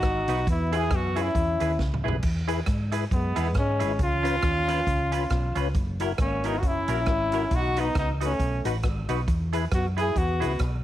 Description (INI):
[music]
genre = ska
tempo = 136 BPM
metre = 4/4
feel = swing 57% on 8ths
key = E major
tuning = A4 = 440 Hz
[part]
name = dark horn section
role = melody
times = 0.0-10.6 s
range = G#3 to G#4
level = -27 LUFS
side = left 1 dB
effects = none
[part]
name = mellow tonewheel organ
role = stabs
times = 0.0-10.7 s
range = C#4 to B4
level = -34 LUFS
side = left 9 dB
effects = chorus vibrato, slow rotary speaker
[part]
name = hollow-body short-scale fingered electric bass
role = bass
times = 0.0-10.8 s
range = F#1 to G#2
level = -28 LUFS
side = equal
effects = none
[part]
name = swinging big-band drum kit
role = drums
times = 0.0-10.7 s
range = crash cymbal, hi-hat, kick drum, rim click, snare drum, toms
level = -29 LUFS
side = equal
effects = none
[part]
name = semi-hollow electric guitar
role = accompaniment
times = 0.3-10.5 s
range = C#4 to B4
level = -35 LUFS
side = right 9 dB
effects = none
[sound]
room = light reverb, small room ambience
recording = 1960s-style stereo with parts hard left and right, vinyl crackle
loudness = -23 LUFS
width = side -13 dB against mid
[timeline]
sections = 0.0-2.2 A section; 2.2-10.8 A section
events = drum fill 1.8-2.2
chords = 0.5 E; 4.0 C#7; 5.8 F#7; 7.5 B; 9.3 E